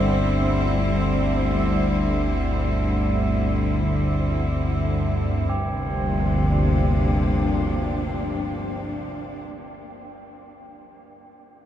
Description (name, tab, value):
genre	dark ambient drone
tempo	free time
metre	none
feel	none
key	G dorian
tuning	A4 = 441 Hz
part	clear chamber cello section	sustained chords	0.0-9.5 s	G2 to E4	-24 LUFS	left 1 dB	none
part	tubular bells	arpeggios	0.0-11.6 s	G4	-36 LUFS	right 3 dB	diffuse ambient delay
part	analog drone	drone	0.0-8.9 s	G1 to D2	-23 LUFS	equal	chorus
room	moderate huge ambient reverb, RT60 9.1 s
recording	in a vast, echoing space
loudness	-20 LUFS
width	side -10 dB against mid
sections	0.0-5.5 A section; 5.5-9.1 B section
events	none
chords	0.0 C; 5.5 Gm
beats	free time